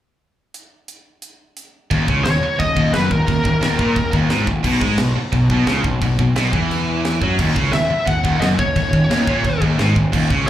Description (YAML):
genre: heavy metal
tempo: 175 BPM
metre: 4/4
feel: straight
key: Eb phrygian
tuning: A4 = 440 Hz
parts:
  - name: tight metal drum kit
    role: drums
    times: 0.5-10.5 s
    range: china cymbal, crash cymbal, hi-hat, kick drum, snare drum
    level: -23 LUFS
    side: equal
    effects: none
  - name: distorted electric guitar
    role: riff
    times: 1.9-10.5 s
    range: Eb2 to Ab3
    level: -25 LUFS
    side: equal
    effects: distortion
  - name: heavy high-gain guitar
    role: riff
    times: 1.9-10.5 s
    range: Eb2 to Ab3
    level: -24 LUFS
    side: right 9 dB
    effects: distortion
  - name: sludgy distorted guitar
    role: riff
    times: 1.9-10.5 s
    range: Eb2 to Ab3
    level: -21 LUFS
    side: left 4 dB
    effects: overdrive
  - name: fuzz picked electric bass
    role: bass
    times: 1.9-10.5 s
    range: Eb1 to Ab2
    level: -22 LUFS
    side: right 1 dB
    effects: overdrive
  - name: high-gain lead guitar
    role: melody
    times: 2.2-4.1, 7.7-10.5 s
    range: Bb4 to Gb5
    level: -21 LUFS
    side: left 1 dB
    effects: distortion, slapback echo, tape echo
room: light reverb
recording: live gig heard through the venue's PA, club ambience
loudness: -15 LUFS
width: side -12 dB against mid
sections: 0.5-1.9 A section; 1.9-10.5 B section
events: drum fill 7.2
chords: 0.5 N.C.; 1.9 Ebm; 4.6 B5; 7.4 Ebm